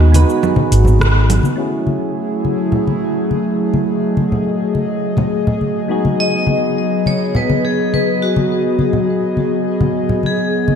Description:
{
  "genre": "sunset chillout",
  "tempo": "104 BPM",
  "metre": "4/4",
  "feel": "straight",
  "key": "F# dorian",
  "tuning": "A4 = 440 Hz",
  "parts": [
    { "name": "vibraphone with hard mallets", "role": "melody", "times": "0.0-1.0, 6.2-10.8 s", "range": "F#4 to D#5", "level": "-20 LUFS", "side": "left 1 dB", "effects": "ping-pong delay" },
    { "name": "soft electric-piano-like synth keys", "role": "accompaniment", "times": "0.0-10.8 s", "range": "G#3 to B4", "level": "-23 LUFS", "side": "moving between left 3 dB and right 4 dB", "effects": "chorus, auto-pan, low-pass filter, diffuse ambient delay" },
    { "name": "airy breathy pad", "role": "sustained chords", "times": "0.0-10.8 s", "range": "D#3 to D#5", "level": "-18 LUFS", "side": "left 1 dB", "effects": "chorus" },
    { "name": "hollow-body short-scale fingered electric bass", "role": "bass", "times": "0.0-1.4 s", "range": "G#1 to D#2", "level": "-10 LUFS", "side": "equal", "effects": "none" },
    { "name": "deep house drum kit", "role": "drums", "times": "0.0-1.6 s", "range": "congas, hi-hat, rim click, shaker", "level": "-21 LUFS", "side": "right 3 dB", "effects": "low-pass filter on hats, low-pass filter on perc, low-pass filter on snare" },
    { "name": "congas", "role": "percussion", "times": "0.1-10.8 s", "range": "none", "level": "-20 LUFS", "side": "left 2 dB", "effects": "none" }
  ],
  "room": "wet lush hall reverb, RT60 1.8 s",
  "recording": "dreamy mix soaked in reverb",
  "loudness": "-14 LUFS",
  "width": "side -7 dB against mid",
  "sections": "0.0-1.6 A section; 1.6-10.8 B section",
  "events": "band accent 1.0; filter sweep on synth keys 1.6-10.8",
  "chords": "0.0 G#m7; 1.6 F#m9; 5.9 G#m7",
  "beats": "0.43 1.00 | 1.58 2.16 2.73 3.31 | 3.89 4.46 5.04 5.62 | 6.20 6.77 7.35 7.93 | 8.50 9.08 9.66 10.23"
}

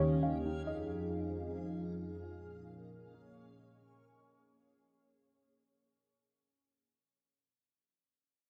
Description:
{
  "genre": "hip hop",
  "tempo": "134 BPM",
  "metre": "4/4",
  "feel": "half-time",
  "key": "unclear",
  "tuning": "A4 = 440 Hz",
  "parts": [
    { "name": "hollow square pluck", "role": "melody", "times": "0.0-3.6 s", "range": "Bb4 to F5", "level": "-41 LUFS", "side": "equal", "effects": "chorus, low-pass filter, delay" },
    { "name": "dark analog pad", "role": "sustained chords", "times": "0.0-4.0 s", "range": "Eb2 to Ab4", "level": "-39 LUFS", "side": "equal", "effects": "chorus, low-pass filter" },
    { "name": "concert harp", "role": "arpeggios", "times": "0.0-6.7 s", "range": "Db4 to Db6", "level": "-49 LUFS", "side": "equal", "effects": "low-pass filter, delay" },
    { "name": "backwards swelling texture", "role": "texture", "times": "0.0-4.0 s", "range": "Bb3 to F5", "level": "-55 LUFS", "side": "equal", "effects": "built-in reverb" }
  ],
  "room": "light reverb, digital ambience",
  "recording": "worn, warbling old tape, cassette tape, warbly pitch drift",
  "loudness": "-39 LUFS",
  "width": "mono",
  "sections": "0.0-4.0 A section",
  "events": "fade-out 0.0-4.0; filter sweep 0.0-4.0",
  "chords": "0.5 Fm7; 2.2 Bbm7",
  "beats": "0.00 | 0.45 0.90 1.35 1.79 | 2.24 2.69 3.14 3.58"
}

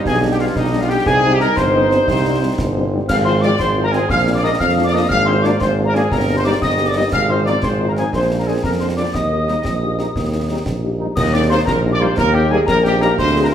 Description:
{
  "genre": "military-style march for wind band",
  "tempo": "119 BPM (dotted quarters)",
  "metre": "6/8",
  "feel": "straight",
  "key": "Eb major",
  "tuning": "A4 = 440 Hz",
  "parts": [
    { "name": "dark woodwind section", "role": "second line", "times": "0.0-13.5 s", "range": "Eb4 to F5", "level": "-23 LUFS", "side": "equal", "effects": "none" },
    { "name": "mellow hollow piccolo", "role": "second line", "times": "0.0-13.5 s", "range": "Eb5 to F6", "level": "-23 LUFS", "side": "left 4 dB", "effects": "none" },
    { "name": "clear trombone section", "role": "sustained chords", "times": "0.0-13.5 s", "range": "F3 to Eb4", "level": "-25 LUFS", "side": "right 2 dB", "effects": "none" },
    { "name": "clear tuba", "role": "bass", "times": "0.0-13.5 s", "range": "G1 to F2", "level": "-18 LUFS", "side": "right 2 dB", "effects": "none" },
    { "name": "mellow trumpet section", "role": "melody", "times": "0.1-13.5 s", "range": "Eb4 to F5", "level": "-22 LUFS", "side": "equal", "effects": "none" },
    { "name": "concert snare drum, concert bass drum and clash cymbals", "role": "drums", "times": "0.1-13.5 s", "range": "none", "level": "-25 LUFS", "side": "equal", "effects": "none" },
    { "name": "mellow French horn section", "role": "accompaniment", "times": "0.2-13.5 s", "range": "F3 to Ab4", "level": "-24 LUFS", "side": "left 4 dB", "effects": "none" }
  ],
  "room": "wet recital hall reverb, RT60 1.4 s",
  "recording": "recorded in a church or concert hall",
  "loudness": "-14 LUFS",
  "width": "side -9 dB against mid",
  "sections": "0.0-11.2 A section; 11.2-13.5 B section",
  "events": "none",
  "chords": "0.1 G/B; 1.1 Cm; 3.1 Fm/Ab; 4.1 Bb; 5.1 Bb7/Ab; 6.1 Eb/G; 7.1 Fm7/Ab; 8.1 Bb; 9.1 Eb",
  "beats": "| 0.05 0.56 | 1.06 1.57 | 2.08 2.58 | 3.08 3.59 | 4.09 4.60 | 5.11 5.61 | 6.12 6.62 | 7.12 7.63 | 8.13 8.64 | 9.14 9.65 | 10.15 10.66 | 11.16 11.67 | 12.17 12.68 | 13.18"
}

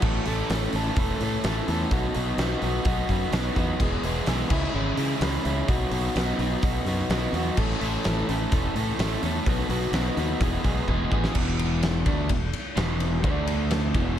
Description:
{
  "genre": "classic rock",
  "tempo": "127 BPM",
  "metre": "4/4",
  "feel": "straight",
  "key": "E major",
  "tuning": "A4 = 440 Hz",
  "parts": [
    { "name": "crunchy overdriven guitar", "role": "riff", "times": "0.0-14.2 s", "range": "E2 to A4", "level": "-27 LUFS", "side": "equal", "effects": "spring reverb" },
    { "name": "modern bright fingered electric bass", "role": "bass", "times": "0.0-14.2 s", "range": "E1 to C#3", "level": "-28 LUFS", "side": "equal", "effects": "none" },
    { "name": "big rock drum kit", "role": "drums", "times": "0.0-14.1 s", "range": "crash cymbal, hi-hat, kick drum, ride cymbal, snare drum", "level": "-27 LUFS", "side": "equal", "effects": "none" }
  ],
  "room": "light reverb, studio ambience",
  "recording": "none",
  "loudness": "-23 LUFS",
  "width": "side -10 dB against mid",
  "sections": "0.0-11.4 A section; 11.4-14.2 B section",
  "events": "drum fill 10.9-11.4",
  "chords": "0.0 A; 1.9 B; 3.8 E; 4.5 C#m; 5.7 B; 7.6 A; 9.5 B; 10.4 E; 11.4 E5; 13.2 D5",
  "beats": "| 0.03 0.50 0.97 1.44 | 1.92 2.39 2.86 3.33 | 3.80 4.27 4.75 5.22 | 5.69 6.16 6.63 7.11 | 7.58 8.05 8.52 8.99 | 9.47 9.94 10.41 10.88 | 11.36 11.83 12.30 12.77 | 13.24 13.71 14.19"
}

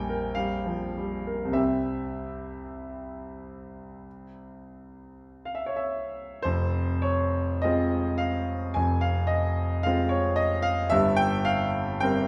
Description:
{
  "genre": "classical, romantic nocturne for solo piano",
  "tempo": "48-56 BPM",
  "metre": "4/4",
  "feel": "rubato",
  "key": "F minor",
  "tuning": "A4 = 442 Hz",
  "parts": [
    { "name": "clear concert grand piano", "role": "solo", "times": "0.0-12.3 s", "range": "F1 to Ab5", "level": "-28 LUFS", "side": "equal", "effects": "none" }
  ],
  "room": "wet large studio reverb, RT60 1.1 s",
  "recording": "heard from further back in the room",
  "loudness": "-27 LUFS",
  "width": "mono",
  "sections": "0.0-6.4 A section; 6.4-12.3 B section",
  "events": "none",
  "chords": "0.0 Gm7/Bb; 1.6 C; 6.4 Fm; 10.9 C7/G",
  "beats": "0.41 | 1.58 2.83 4.06 5.24 | 6.45 7.62 8.74 9.83 | 10.91 12.02"
}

